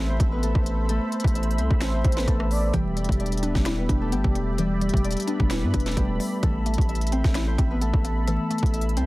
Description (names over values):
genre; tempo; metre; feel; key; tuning
hip hop, trap; 130 BPM; 4/4; half-time; unclear; A4 = 440 Hz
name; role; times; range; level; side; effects
Celtic harp; melody; 0.0-9.1 s; G3 to E5; -29 LUFS; left 1 dB; none
warm analog pad; sustained chords; 0.0-9.1 s; G4 to B5; -35 LUFS; equal; chorus
hard-hitting 808-style bass; bass; 0.0-9.1 s; D1 to G2; -25 LUFS; equal; none
trap drum kit; drums; 0.2-9.1 s; finger snaps, hi-hat, kick drum, rim click, snare drum; -25 LUFS; equal; none
gliding portamento lead; second line; 1.8-2.7, 5.5-6.4 s; B4 to D5; -34 LUFS; right 2 dB; chorus, digital delay
mallet-like synth pluck; accompaniment; 2.7-9.1 s; E3 to E4; -31 LUFS; left 1 dB; chorus, phaser
room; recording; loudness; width
little or no reverb; dense, heavily limited modern master, vinyl crackle; -21 LUFS; side -19 dB against mid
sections
0.0-9.1 A section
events
none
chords
0.0 Amadd9; 2.7 Em7; 6.4 Amadd9